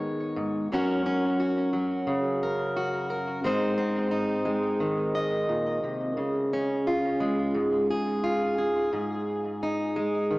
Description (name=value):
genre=folk, solo fingerstyle acoustic guitar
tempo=88 BPM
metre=4/4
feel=straight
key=unclear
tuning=A4 = 439 Hz
part: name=fingerpicked plugged-in steel-string acoustic guitar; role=solo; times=0.0-10.4 s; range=F#2 to D#5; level=-25 LUFS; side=equal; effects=tape echo
room=wet plate reverb, RT60 3.1 s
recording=dreamy mix soaked in reverb, small speaker sound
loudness=-25 LUFS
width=side -21 dB against mid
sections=0.0-10.4 A section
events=none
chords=0.0 G#m; 0.7 F#; 3.4 G#; 6.2 C#; 8.9 G#5